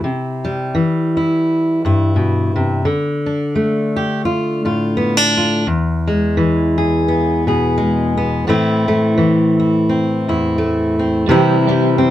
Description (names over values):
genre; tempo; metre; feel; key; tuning
acoustic folk duo or small band; 85 BPM; 4/4; swing 57% on 8ths; C major; A4 = 437 Hz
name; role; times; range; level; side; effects
fingerpicked steel-string acoustic guitar; accompaniment; 0.0-12.1 s; E2 to G#4; -14 LUFS; left 1 dB; none
electric guitar through a small old amp; arpeggios; 11.3-12.1 s; G3 to G4; -17 LUFS; right 6 dB; tremolo
room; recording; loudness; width
moderate studio ambience, RT60 0.5 s; close, detailed microphones; -14 LUFS; side -12 dB against mid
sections
0.0-11.3 A section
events
none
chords
0.0 C; 2.8 Dm; 5.7 E; 8.5 Am; 11.3 C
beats
| 0.04 0.74 1.44 2.15 | 2.85 3.55 4.25 4.96 | 5.66 6.36 7.07 7.77 | 8.47 9.18 9.88 10.58 | 11.29 11.99